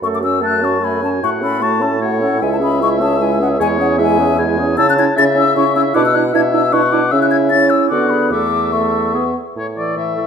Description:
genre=quick classical-period movement for wind quintet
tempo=151 BPM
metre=3/4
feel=rubato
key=F# minor, A major from 4.8 s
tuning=A4 = 443 Hz
part: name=mellow hollow silver concert flute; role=melody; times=0.0-10.3 s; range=F#5 to A6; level=-18 LUFS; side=left 7 dB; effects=none
part: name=clear French horn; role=accompaniment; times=0.0-10.3 s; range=E3 to D4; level=-20 LUFS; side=right 1 dB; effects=none
part: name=clear clarinet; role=accompaniment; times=0.0-10.3 s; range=E4 to A4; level=-21 LUFS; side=right 8 dB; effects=none
part: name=mellow bassoon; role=bass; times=0.0-10.3 s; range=C#2 to D3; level=-19 LUFS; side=right 2 dB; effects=none
part: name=warm oboe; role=second line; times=0.4-10.3 s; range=C#5 to A5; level=-21 LUFS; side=left 6 dB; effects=none
room=wet recital hall reverb, RT60 1.4 s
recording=none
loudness=-12 LUFS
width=side -7 dB against mid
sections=0.0-9.6 A section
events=none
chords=0.0 F#m; 1.2 F#m/A; 2.4 C#m; 3.6 C#m/E; 4.8 A/C#; 6.0 E5/B; 7.1 C#m; 7.9 Bm/D; 8.3 A/E; 9.1 E; 9.6 A

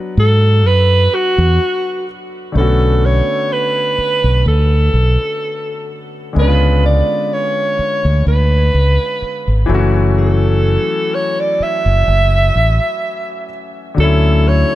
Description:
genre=contemporary R&B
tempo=63 BPM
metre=4/4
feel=swing 54% on 16ths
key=unclear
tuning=A4 = 442 Hz
part: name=warm baby grand piano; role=accompaniment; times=0.0-14.8 s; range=D3 to F#4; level=-21 LUFS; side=left 4 dB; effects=none
part: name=mellow alto saxophone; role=melody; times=0.2-14.8 s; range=F#4 to E5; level=-17 LUFS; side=right 2 dB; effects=tape echo
part: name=fingered electric bass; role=bass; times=0.2-14.6 s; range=F#1 to G#2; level=-12 LUFS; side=equal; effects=none
room=studio ambience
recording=none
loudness=-12 LUFS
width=side -15 dB against mid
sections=0.0-2.6 A section; 2.6-14.8 B section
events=none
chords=0.0 G#m7b5; 2.6 Bm9; 6.4 C#7b9; 9.7 F#m7; 14.0 Dmaj9

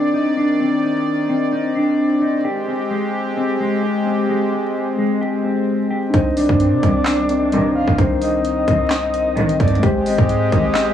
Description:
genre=hip hop, trap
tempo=130 BPM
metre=4/4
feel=half-time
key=C minor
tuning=A4 = 442 Hz
part: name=warm analog pad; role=sustained chords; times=0.0-10.9 s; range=Eb3 to D5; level=-23 LUFS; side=right 1 dB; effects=chorus
part: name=mellow electric guitar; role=arpeggios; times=0.0-10.9 s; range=Ab3 to G4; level=-19 LUFS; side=left 2 dB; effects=low-pass filter, tape echo
part: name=mellow tine electric piano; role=accompaniment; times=6.1-10.9 s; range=Ab3 to C5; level=-22 LUFS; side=left 1 dB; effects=medium stereo tremolo, low-pass filter
part: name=long sustained 808-style bass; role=bass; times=6.1-10.9 s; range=Ab1 to C3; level=-24 LUFS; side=right 1 dB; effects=none
part: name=trap drum kit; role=drums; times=6.1-10.9 s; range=handclaps, hi-hat, kick drum, snare drum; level=-19 LUFS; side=equal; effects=vintage 12-bit sampler grit
part: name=breathy flute-like synth lead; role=second line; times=6.4-10.9 s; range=D5 to F5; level=-22 LUFS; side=left 1 dB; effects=chorus, tape echo
part: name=muted symphonic string section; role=stabs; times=6.8-10.6 s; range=C2 to Eb3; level=-24 LUFS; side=right 1 dB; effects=tape echo
room=moderate small room reverb, RT60 0.5 s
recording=vinyl crackle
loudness=-15 LUFS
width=side -10 dB against mid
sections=0.0-10.9 A section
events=none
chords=0.0 Cmadd9; 2.4 Abmaj7; 6.1 Cmadd9; 9.8 Abmaj7

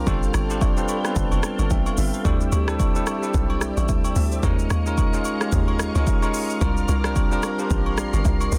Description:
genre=amapiano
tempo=110 BPM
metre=4/4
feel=swing 58% on 16ths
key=unclear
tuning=A4 = 444 Hz
part: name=bell-like tine electric piano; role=accompaniment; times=0.0-8.6 s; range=G3 to B5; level=-28 LUFS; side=equal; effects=none
part: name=ensemble organ-string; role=sustained chords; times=0.0-8.6 s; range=Ab3 to Db6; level=-35 LUFS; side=equal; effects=ensemble chorus, sidechain pumping
part: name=tight log drum bass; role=bass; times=0.0-8.6 s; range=F1 to Eb2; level=-26 LUFS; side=equal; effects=none
part: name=afro-pop drum kit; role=drums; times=0.1-8.6 s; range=hi-hat, kick drum, rim click, shaker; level=-26 LUFS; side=equal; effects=soft clipping on snare
part: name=agogo bells and woodblock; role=percussion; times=0.1-8.5 s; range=none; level=-37 LUFS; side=equal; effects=none
room=little or no reverb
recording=dense, heavily limited modern master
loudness=-22 LUFS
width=mono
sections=0.0-8.6 A section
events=tine electric piano fill 0.6-2.2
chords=0.1 G9sus4; 2.2 D9sus4; 4.4 Eb9sus4; 6.6 C9sus4

